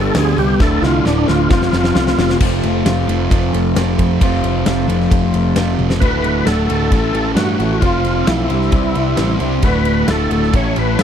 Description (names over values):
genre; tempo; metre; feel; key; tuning
classic rock; 133 BPM; 4/4; straight; unclear; A4 = 441 Hz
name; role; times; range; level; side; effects
overdriven tonewheel organ; melody; 0.0-2.4, 6.0-11.0 s; D4 to C#5; -19 LUFS; left 1 dB; slow rotary speaker, chorus vibrato, slapback echo
picked twelve-string acoustic guitar; accompaniment; 0.0-11.0 s; F2 to G4; -26 LUFS; right 6 dB; none
crunchy overdriven guitar; riff; 0.0-11.0 s; D2 to C5; -23 LUFS; right 1 dB; none
overdriven electric guitar; riff; 0.0-11.0 s; D2 to C5; -22 LUFS; left 14 dB; none
sludgy distorted guitar; riff; 0.0-11.0 s; D2 to C5; -21 LUFS; right 9 dB; overdrive
picked electric bass; bass; 0.0-11.0 s; D1 to G2; -19 LUFS; equal; none
huge arena drum kit; drums; 0.1-11.0 s; crash cymbal, hi-hat, kick drum, ride cymbal, snare drum, toms; -19 LUFS; equal; none
room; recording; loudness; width
light reverb; dry, close 1970s-style studio recording; -13 LUFS; side -8 dB against mid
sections
0.0-2.4 A section; 2.4-6.0 B section; 6.0-11.0 C section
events
tonewheel organ solo 0.0-2.4; drum fill 0.6-2.4, 5.8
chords
0.0 G; 0.6 Dadd9; 1.5 F; 6.0 D; 6.9 A; 7.8 F; 8.5 Cadd9; 9.6 D